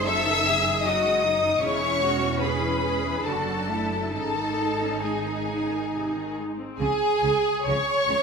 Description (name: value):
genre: classical, slow romantic movement for string orchestra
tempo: 66-79 BPM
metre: 3/4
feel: rubato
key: C# minor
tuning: A4 = 442 Hz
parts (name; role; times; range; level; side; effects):
- rich studio violin section; melody; 0.0-8.2 s; G#5 to E6; -29 LUFS; left 4 dB; none
- clear studio violin section; second line; 0.0-8.2 s; G#4 to E5; -26 LUFS; left 3 dB; none
- rich studio viola section; accompaniment; 0.0-8.2 s; B#2 to C#5; -28 LUFS; right 2 dB; none
- clear studio double bass section; bass; 0.0-8.2 s; E1 to C#2; -32 LUFS; right 5 dB; none
- rich studio cello section; bass; 0.0-8.2 s; C#3 to A4; -32 LUFS; right 2 dB; none
room: wet scoring stage reverb, RT60 1.9 s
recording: minimal, uncompressed stereo recording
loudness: -22 LUFS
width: side -5 dB against mid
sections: 0.0-6.8 A section; 6.8-8.2 B section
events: none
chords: 0.0 G#7(no3)/F#; 1.6 C#m/E; 3.2 D/F#; 4.1 G#sus4; 5.9 G#; 6.8 C#5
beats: 0.05 0.83 | 1.62 2.40 3.24 | 4.13 5.03 5.93 | 6.79 7.66